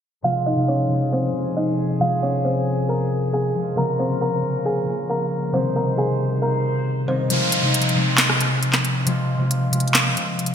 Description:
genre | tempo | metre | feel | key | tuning
hip hop, trap | 136 BPM | 4/4 | half-time | F minor | A4 = 440 Hz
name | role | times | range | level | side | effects
kalimba | melody | 0.2-7.3 s | C4 to Bb5 | -23 LUFS | equal | none
concert harp | accompaniment | 0.2-10.5 s | C3 to F4 | -22 LUFS | left 1 dB | none
clear brass ensemble | sustained chords | 0.2-7.3 s | F2 to C5 | -33 LUFS | left 1 dB | none
trap drum kit | drums | 7.3-10.5 s | handclaps, hi-hat, rim click, snare drum | -19 LUFS | equal | gated reverb
downlifter | sound effects | 7.3-10.5 s | none | -25 LUFS | right 1 dB | none
room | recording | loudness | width
moderate lush hall reverb, RT60 2.4 s | bright 1980s-style digital production, low-pass filter | -18 LUFS | side -8 dB against mid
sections
0.2-7.3 A section; 7.3-10.5 B section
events
filter sweep 0.2-7.3; kick muted 7.3-10.5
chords
0.2 Fm; 3.8 Bbm; 5.5 Cm; 7.3 Fm

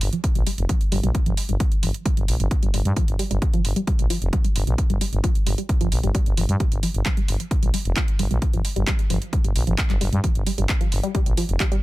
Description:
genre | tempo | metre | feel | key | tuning
driving peak-time techno | 132 BPM | 4/4 | straight | G minor | A4 = 440 Hz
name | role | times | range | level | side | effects
growling FM bass | bass | 0.0-11.6 s | F1 to G2 | -22 LUFS | equal | sidechain pumping
techno drum kit | drums | 0.0-11.8 s | handclaps, hi-hat | -30 LUFS | right 2 dB | sidechain pumping on hats
tight sequenced synth | riff | 0.1-11.8 s | F3 to G3 | -29 LUFS | equal | chorus, sidechain pumping, tape echo
electronic kick drum | drums | 0.2-11.7 s | none | -22 LUFS | equal | none
room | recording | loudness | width
little or no reverb | none | -19 LUFS | side -18 dB against mid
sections
0.0-11.8 A section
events
filter sweep on synth arpeggio sound 0.0-11.8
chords
none

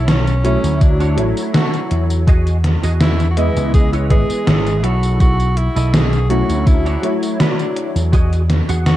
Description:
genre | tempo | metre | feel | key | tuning
vaporwave | 82 BPM | 4/4 | straight | E major | A4 = 439 Hz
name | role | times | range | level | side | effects
edgy alto saxophone | melody | 0.0-9.0 s | C#4 to G#4 | -24 LUFS | right 1 dB | tape echo
semi-hollow electric guitar | riff | 0.0-9.0 s | D4 to F#5 | -28 LUFS | right 2 dB | ensemble chorus, low-pass filter, tape echo
vintage slap bass | bass | 0.0-9.0 s | G#1 to E2 | -16 LUFS | equal | none
gated 80s digital drum machine | drums | 0.1-9.0 s | hi-hat, snare drum, tambourine | -19 LUFS | equal | gated reverb, gated reverb snare, overdrive
warm electric grand piano | accompaniment | 0.4-8.1 s | E3 to D#5 | -21 LUFS | left 1 dB | ensemble chorus, vintage 12-bit sampler grit
electronic kick drum | drums | 0.8-8.3 s | none | -13 LUFS | equal | overdrive
room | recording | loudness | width
light reverb | dark, warm production | -13 LUFS | side -14 dB against mid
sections
0.0-9.0 A section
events
none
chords
0.0 B9sus4; 0.8 Dmaj7; 2.3 Emaj9; 3.7 C#m7; 4.8 B9sus4; 6.7 Dmaj7; 8.1 Emaj9

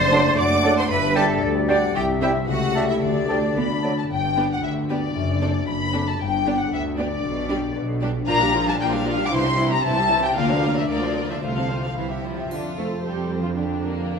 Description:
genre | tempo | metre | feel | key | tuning
cinematic, playful, whimsical film cue | 114 BPM | 2/4 | straight | G major, F major from 8.3 s | A4 = 440 Hz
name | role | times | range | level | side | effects
rich studio violin section | second line | 0.0-14.2 s | Bb3 to D6 | -30 LUFS | left 1 dB | none
silver concert flute | second line | 0.0-3.8 s | D5 to F#5 | -28 LUFS | left 2 dB | none
mellow French horn section | sustained chords | 0.0-3.8, 12.8-13.9 s | G3 to Bb4 | -27 LUFS | left 2 dB | none
concert harp | arpeggios | 0.0-14.2 s | F#2 to A5 | -27 LUFS | left 5 dB | none
bright studio double bass section | bass | 0.0-14.2 s | F#1 to F2 | -28 LUFS | right 3 dB | none
rich studio cello section | bass | 0.0-14.2 s | D2 to D5 | -28 LUFS | right 2 dB | none
dark studio violin section | melody | 0.1-14.2 s | G4 to D6 | -25 LUFS | left 4 dB | none
warm clarinet | second line | 0.1-3.9 s | D5 to E5 | -30 LUFS | left 3 dB | none
warm oboe | second line | 0.1-3.9 s | G5 to A5 | -32 LUFS | right 2 dB | none
rich studio viola section | accompaniment | 0.1-14.2 s | E3 to A4 | -29 LUFS | right 3 dB | none
warm bassoon | accompaniment | 0.1-3.9 s | F#3 to G3 | -30 LUFS | right 3 dB | none
triangle | percussion | 12.5-13.5 s | none | -50 LUFS | left 1 dB | none
room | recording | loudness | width
wet scoring stage reverb, RT60 1.6 s | minimal, uncompressed stereo recording | -19 LUFS | side -6 dB against mid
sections
0.0-4.1 A section; 4.1-12.5 B section; 12.5-14.2 C section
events
none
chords
0.0 D7/F#; 0.9 G; 2.0 C; 2.5 A7/C#; 3.0 Dsus4; 3.6 D; 4.1 G; 5.2 D7/F#; 6.2 G; 7.2 G/B; 8.3 Gm7/Bb; 9.3 C; 10.4 Bb/D; 11.4 F/C; 12.0 C; 12.5 F; 13.6 Gm7/F

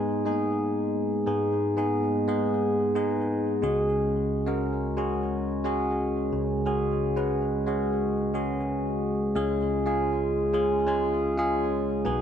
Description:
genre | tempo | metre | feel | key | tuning
pop | 89 BPM | 4/4 | straight | unclear | A4 = 437 Hz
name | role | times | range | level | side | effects
bell-like tine electric piano | solo | 0.0-12.2 s | B1 to B4 | -24 LUFS | equal | phaser, digital delay
room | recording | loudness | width
wet lush hall reverb, RT60 2.3 s | none | -24 LUFS | side -8 dB against mid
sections
0.0-9.4 A section; 9.4-12.2 B section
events
none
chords
0.0 G#m; 3.6 C#sus4; 9.4 C#

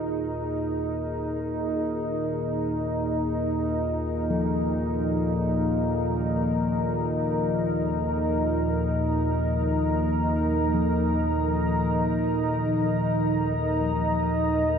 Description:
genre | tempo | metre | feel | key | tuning
dark ambient drone | free time | none | none | unclear | A4 = 440 Hz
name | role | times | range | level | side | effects
deep dark ambient pad | sustained chords | 0.0-14.8 s | Eb4 to Bb5 | -26 LUFS | right 1 dB | chorus, built-in reverb
bronze singing bowl | arpeggios | 0.0-14.8 s | F3 to Ab4 | -31 LUFS | left 4 dB | diffuse ambient delay
analog drone | drone | 0.0-14.8 s | Eb2 to Bb2 | -27 LUFS | equal | chorus
room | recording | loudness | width
wet huge ambient reverb, RT60 7.0 s | none | -23 LUFS | side -7 dB against mid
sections
0.0-14.8 A section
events
fade-in on synth drone 0.0-14.8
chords
0.0 Absus2

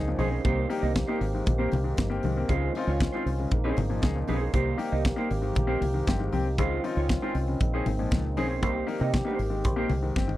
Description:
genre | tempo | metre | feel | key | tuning
disco | 117 BPM | 4/4 | straight | unclear | A4 = 440 Hz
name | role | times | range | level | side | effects
clear baby grand piano | accompaniment | 0.0-10.4 s | Ab2 to Ab4 | -32 LUFS | left 5 dB | none
mellow French horn section | sustained chords | 0.0-10.4 s | Db3 to G4 | -33 LUFS | equal | none
deep dub fingered electric bass | bass | 0.0-10.4 s | G1 to C3 | -29 LUFS | equal | none
mellow electric guitar | accompaniment | 0.1-10.3 s | Ab3 to Eb5 | -33 LUFS | right 6 dB | none
modern studio drum kit | drums | 0.2-10.4 s | hi-hat, kick drum, snare drum, toms | -28 LUFS | equal | none
congas | percussion | 0.2-10.3 s | none | -36 LUFS | left 5 dB | none
room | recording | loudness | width
little or no reverb | dry, close 1970s-style studio recording | -24 LUFS | side -15 dB against mid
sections
0.0-10.4 A section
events
drum fill 10.2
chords
0.4 Cm7; 1.2 Abmaj9; 2.5 Dbmaj9; 3.5 Bbm11; 4.5 Cm7; 5.3 Abmaj9; 6.6 Dbmaj9; 7.6 Bbm11; 8.6 Cm7; 9.4 Abmaj9

